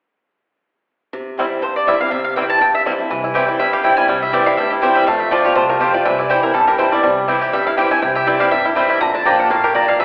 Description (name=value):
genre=bluegrass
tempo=244 BPM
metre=4/4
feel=swing 55% on 8ths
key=C mixolydian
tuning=A4 = 441 Hz
part: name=picked swing-style acoustic guitar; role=accompaniment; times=1.1-10.0 s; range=F2 to F4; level=-23 LUFS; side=equal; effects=none
part: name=bluegrass banjo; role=arpeggios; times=1.4-10.0 s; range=D3 to G4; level=-21 LUFS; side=equal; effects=none
part: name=mandolin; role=melody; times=1.6-10.0 s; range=G4 to Bb5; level=-20 LUFS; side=equal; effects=none
part: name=upright bass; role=bass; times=3.1-10.0 s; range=G1 to F2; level=-40 LUFS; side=equal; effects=none
part: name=mandolin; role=stabs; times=3.3-9.9 s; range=Bb3 to Bb5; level=-25 LUFS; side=equal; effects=none
room=wet recital hall reverb, RT60 1.4 s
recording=recorded in a church or concert hall, telephone sound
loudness=-16 LUFS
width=mono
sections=1.1-3.1 A section; 3.1-10.0 B section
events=none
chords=1.1 C; 5.1 F; 6.1 C; 9.0 Bb